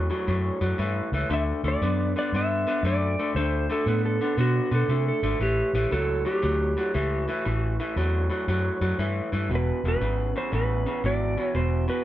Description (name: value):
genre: electric blues shuffle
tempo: 117 BPM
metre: 4/4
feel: swing 66% on 8ths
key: A mixolydian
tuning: A4 = 441 Hz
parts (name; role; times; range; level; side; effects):
- electric guitar through a small old amp; riff; 0.0-12.0 s; E2 to B3; -28 LUFS; left 1 dB; none
- vintage muted fingered electric bass; bass; 0.0-11.9 s; E1 to C3; -26 LUFS; equal; none
- clean lap steel guitar; melody; 1.3-12.0 s; F#4 to E5; -28 LUFS; right 1 dB; none
room: light reverb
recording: band playing live in one room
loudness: -23 LUFS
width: side -13 dB against mid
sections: 0.0-12.0 A section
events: none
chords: 0.0 A7(no3); 1.3 D; 5.4 A7; 9.5 E7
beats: 0.28 0.79 | 1.30 1.82 2.33 2.84 | 3.35 3.87 4.38 4.89 | 5.40 5.91 6.42 6.93 | 7.45 7.96 8.47 8.98 | 9.49 10.00 10.52 11.03 | 11.54